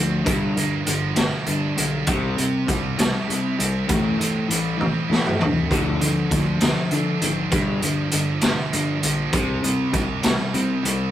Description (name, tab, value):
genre	indie rock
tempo	66 BPM (dotted quarters)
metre	6/8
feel	straight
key	unclear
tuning	A4 = 441 Hz
part	crunchy overdriven guitar	riff	0.0-11.1 s	G2 to C4	-24 LUFS	left 2 dB	none
part	scooped high-gain guitar	riff	0.0-11.1 s	G2 to E4	-27 LUFS	right 6 dB	distortion
part	fuzz picked electric bass	bass	0.0-11.1 s	G1 to D3	-27 LUFS	equal	overdrive
part	raw garage drum kit	drums	0.3-11.0 s	hi-hat, kick drum, snare drum, toms	-23 LUFS	equal	none
room	moderate studio reverb, RT60 0.6 s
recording	rough rehearsal-room recording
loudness	-19 LUFS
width	side -12 dB against mid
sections	0.0-11.1 A section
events	drum fill 4.8-5.7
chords	0.3 Gm7; 2.1 C; 3.9 Am7; 5.7 Dm7; 7.5 Gm7; 9.3 C5